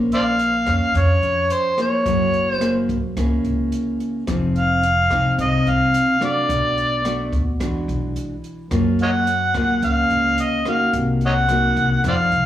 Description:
bossa nova; 108 BPM; 4/4; straight; A4 = 441 Hz
nylon-string guitar; accompaniment; 0.0-12.5 s; B2 to C5; -22 LUFS; equal
upright bass; bass; 0.0-12.5 s; F1 to Gb2; -23 LUFS; equal
overdriven harmonica; melody; 0.1-12.5 s; C5 to Gb5; -19 LUFS; equal; slapback echo
open jazz drum kit; drums; 0.1-12.4 s; hi-hat, kick drum, rim click; -30 LUFS; equal
light reverb, studio reverb; live gig heard through the venue's PA, club reverb; -17 LUFS; side -12 dB against mid
0.0-12.5 A section
0.0 Bbm9; 2.1 Gb9; 4.3 Fm7; 6.5 Bm7; 7.6 E9; 8.7 Gbmaj9; 10.9 Cm7b5

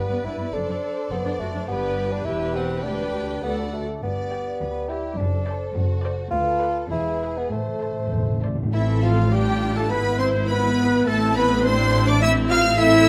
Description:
quick classical-period movement for symphony orchestra; 103 BPM; 2/4; rubato; G major, A minor from 6.3 s; A4 = 436 Hz
rich studio violin section; melody; 0.0-13.1 s; F#4 to F6; -32 LUFS; equal
rich chamber violin section; second line; 0.0-13.1 s; E4 to B5; -33 LUFS; equal
rich chamber viola section; accompaniment; 0.0-13.1 s; B3 to D5; -31 LUFS; equal
warm bassoon; accompaniment; 0.0-8.4 s; A3 to F4; -30 LUFS; equal
clear French horn section; sustained chords; 0.0-13.1 s; E3 to D5; -29 LUFS; equal
rich chamber cello section; bass; 0.1-13.1 s; D2 to A2; -32 LUFS; equal
rich chamber double bass section; bass; 0.2-13.1 s; E1 to D2; -29 LUFS; equal
timpani; percussion; 7.5-8.7 s; A2; -30 LUFS; equal
mellow clarinet; second line; 8.1-13.1 s; E4 to F5; -29 LUFS; equal
flute section; second line; 8.7-13.1 s; E4 to F5; -32 LUFS; equal
warm trumpet section; stabs; 8.7-13.1 s; E4 to F5; -31 LUFS; equal
moderate recital hall reverb, RT60 1.3 s; -23 LUFS; mono
0.0-8.7 A section; 8.7-13.1 B section
timpani fill 7.5-8.7
0.0 G; 0.5 D7/F#; 1.7 G; 2.3 Em; 2.8 G/D; 3.4 D; 4.0 G; 5.2 D7/F#; 6.3 Bdim/D; 6.9 E; 7.5 Am; 9.3 Dm/A; 9.9 E/G#; 11.1 Am; 11.7 Amadd11; 12.2 Am

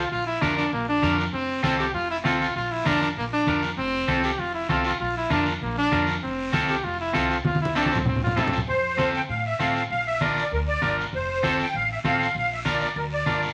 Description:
latin, cumbia; 196 BPM; 4/4; straight; F major; A4 = 442 Hz
bright trumpet; second line; 0.0-8.5 s; Bb3 to G4; -28 LUFS; equal
electric guitar at the edge of break-up; accompaniment; 0.0-13.5 s; C4 to Bb4; -29 LUFS; equal
upright bass; bass; 0.0-13.5 s; F1 to A2; -36 LUFS; equal
congas; percussion; 0.1-13.4 s; -32 LUFS; equal
guiro; percussion; 0.1-13.5 s; -38 LUFS; equal
musette accordion; melody; 8.7-13.4 s; Bb4 to G5; -27 LUFS; equal
wet studio reverb, RT60 0.9 s; vinyl crackle; -24 LUFS; mono
0.0-8.7 A section; 8.7-13.5 B section
trumpet solo 0.0-8.7; drum fill 7.5-8.7
0.1 Bb; 1.3 F; 2.6 Bb; 3.8 F; 5.0 Bb; 6.2 F; 9.9 Bb; 11.1 F; 12.4 Bb

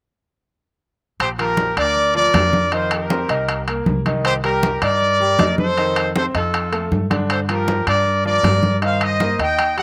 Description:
latin, salsa; 158 BPM; 4/4; straight; Bb major; A4 = 440 Hz
bright trumpet section; melody; 1.2-9.8 s; F4 to G5; -21 LUFS; equal
upright bass; bass; 1.2-9.8 s; Bb1 to G2; -26 LUFS; equal
congas; percussion; 1.2-9.8 s; -24 LUFS; equal
timbales; percussion; 1.2-9.8 s; -27 LUFS; equal
bright upright piano; accompaniment; 1.4-9.8 s; D3 to Eb5; -27 LUFS; equal; slapback echo
little or no reverb; recorded outdoors, with no room sound; -18 LUFS; mono
1.2-9.8 A section
1.2 Bb6; 2.7 F7sus4; 4.2 Cm9; 5.8 F9; 7.3 Gm7; 8.8 Cm7

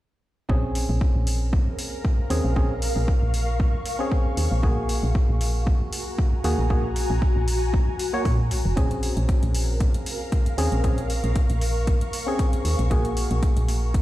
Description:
deep house; 116 BPM; 4/4; swing 54% on 16ths; Bb minor; A4 = 440 Hz
percussive organ stab; stabs; 0.5-14.0 s; Bb3 to Db5; -30 LUFS; equal; chorus, cassette tape, sidechain pumping, digital delay
woody FM bass; bass; 0.5-14.0 s; F1 to Bb2; -24 LUFS; equal; sidechain pumping
electronic kick drum; drums; 0.5-14.0 s; -22 LUFS; equal; overdrive
ethereal airy pad; texture; 1.4-14.0 s; Db4 to Db6; -31 LUFS; left 1 dB; ensemble chorus, built-in reverb, tremolo, sidechain pumping
electronic hi-hat; drums; 0.8-14.0 s; -35 LUFS; equal; overdrive
little or no reverb; played on a big sound system in a bare room, stone room reverb; -21 LUFS; side -15 dB against mid
0.5-14.0 A section
0.5 Bbm9; 4.6 Gbadd9/Bb; 8.8 Bbm9; 12.9 Gbadd9/Bb

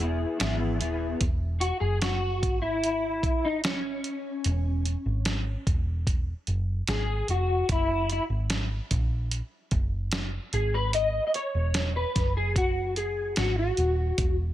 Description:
indie pop, bedroom pop; 74 BPM; 4/4; straight; E lydian; A4 = 440 Hz
electric guitar through a small old amp; accompaniment; 0.0-14.4 s; E3 to D#5; -28 LUFS; left 2 dB; ensemble chorus, warbly pitch drift
picked electric bass; bass; 0.0-14.5 s; D#1 to A#1; -28 LUFS; equal
dusty soul sampler-style drum kit; drums; 0.0-14.4 s; hi-hat, kick drum, snare drum; -29 LUFS; equal
little or no reverb; -25 LUFS; side -13 dB against mid
0.0-1.2 A section; 1.2-14.5 B section
clean electric guitar solo 1.2-14.5
0.0 E; 4.5 C#m/E; 7.7 F#; 10.5 G#5

